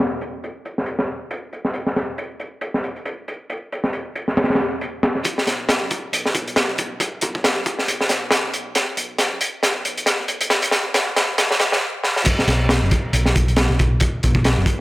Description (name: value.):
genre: breakbeat, breaks.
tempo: 137 BPM.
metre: 4/4.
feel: swing 56% on 16ths.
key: unclear.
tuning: A4 = 435 Hz.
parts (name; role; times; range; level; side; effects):
crunchy breakbeat drum kit; drums; 0.0-14.8 s; crash cymbal, hi-hat, kick drum, snare drum; -18 LUFS; equal; high-pass filter on kick, low-pass filter on kick, high-pass filter on hats, low-pass filter on hats, high-pass filter on cymbals, low-pass filter on cymbals, high-pass filter on snare, low-pass filter on snare, high-pass filter on room, low-pass filter on room.
picked electric bass; bass; 5.5-14.7 s; F#1 to B1; -23 LUFS; equal; high-pass filter.
room: light reverb.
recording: high-pass filter.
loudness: -18 LUFS.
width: side -19 dB against mid.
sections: 0.0-5.3 A section; 5.3-12.3 B section; 12.3-14.8 C section.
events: build-up 5.3-12.3; drum fill 8.8-11.8, 12.0; stop 11.8-12.3; drop 12.3-14.8.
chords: none.